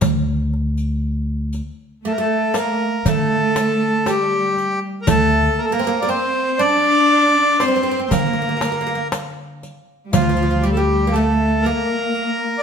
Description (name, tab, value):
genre	Arabic maqam ensemble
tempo	119 BPM (eighths)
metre	10/8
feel	straight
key	D maqam bayati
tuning	A4 = 440 Hz
part	upright bass	bass	0.0-11.7 s	D2 to D3	-22 LUFS	left 1 dB	none
part	darbuka	percussion	0.0-11.8 s	none	-22 LUFS	right 1 dB	none
part	riq	percussion	0.0-12.3 s	none	-28 LUFS	equal	none
part	rich symphonic cello section	second line	2.0-12.6 s	F3 to D4	-23 LUFS	right 1 dB	none
part	accordion	melody	2.1-12.6 s	F4 to D5	-19 LUFS	equal	none
part	oud	second line	2.1-12.6 s	F3 to D4	-23 LUFS	equal	none
room	wet stone room reverb, RT60 1.2 s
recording	band playing live in one room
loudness	-16 LUFS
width	side -6 dB against mid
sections	0.0-12.6 A section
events	none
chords	none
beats	| 0.01 0.52 1.03 1.53 2.04 2.55 3.05 3.56 4.06 4.57 | 5.08 5.58 6.09 6.59 7.10 7.61 8.11 8.62 9.12 9.63 | 10.13 10.64 11.14 11.65 12.16